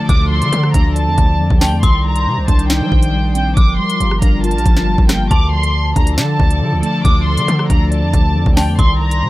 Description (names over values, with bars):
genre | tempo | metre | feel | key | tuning
hip hop, drill | 138 BPM | 4/4 | half-time | D phrygian | A4 = 440 Hz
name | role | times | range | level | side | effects
warm studio violin section | melody | 0.0-9.3 s | G5 to D6 | -21 LUFS | equal | low-pass filter, analog delay
mellow tine electric piano | accompaniment | 0.0-9.3 s | D3 to D5 | -19 LUFS | equal | auto-pan, low-pass filter
sweeping resonant pad | sustained chords | 0.0-9.3 s | Eb3 to D5 | -26 LUFS | equal | chorus
dark detuned synth bell | second line | 0.1-9.3 s | A5 to D6 | -24 LUFS | left 1 dB | chorus, tremolo, analog delay
distorted 808-style bass | bass | 0.1-9.3 s | G1 to G3 | -17 LUFS | equal | distortion
drill drum kit | drums | 0.1-9.2 s | hi-hat, kick drum, rim click, snare drum | -14 LUFS | equal | none
room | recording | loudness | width
little or no reverb | dry, gritty hardware recording | -12 LUFS | side -17 dB against mid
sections
0.0-9.3 A section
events
none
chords
0.0 Dm; 1.8 Cmadd9; 3.6 Gm7; 5.3 Dm; 8.8 Cmadd9